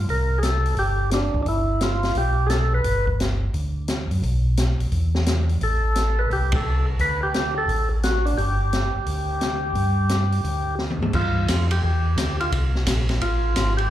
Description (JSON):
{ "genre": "soul jazz organ trio", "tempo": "174 BPM", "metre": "4/4", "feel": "swing 65% on 8ths", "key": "G mixolydian", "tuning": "A4 = 437 Hz", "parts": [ { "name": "mellow tonewheel organ", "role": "bass", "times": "0.0-13.9 s", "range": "G1 to Ab2", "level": "-22 LUFS", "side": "equal", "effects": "slow rotary speaker" }, { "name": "percussive tonewheel organ", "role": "melody", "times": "0.1-3.1, 5.6-13.9 s", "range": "D4 to B4", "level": "-24 LUFS", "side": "equal", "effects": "slow rotary speaker, slapback echo" }, { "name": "open jazz drum kit", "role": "drums", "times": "0.1-13.8 s", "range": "crash cymbal, hi-hat, kick drum, ride cymbal, snare drum, toms", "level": "-27 LUFS", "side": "equal", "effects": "none" } ], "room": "light reverb, studio reverb", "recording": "live gig heard through the venue's PA, club reverb", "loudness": "-20 LUFS", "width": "side -12 dB against mid", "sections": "0.0-11.1 A section; 11.1-13.9 B section", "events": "band accent 6.5; drum fill 10.8-11.1; tonewheel organ solo 11.1-13.9", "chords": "0.1 C5; 1.5 G7; 4.2 N.C.; 5.6 Am; 7.0 D5; 8.4 G5; 12.5 Ab69", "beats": "| 0.08 0.43 0.77 1.12 | 1.46 1.81 2.16 2.50 | 2.85 3.19 3.54 3.88 | 4.23 4.57 4.92 5.26 | 5.61 5.96 6.30 6.65 | 6.99 7.34 7.68 8.03 | 8.37 8.72 9.06 9.41 | 9.75 10.10 10.44 10.79 | 11.13 11.48 11.83 12.17 | 12.52 12.86 13.21 13.55" }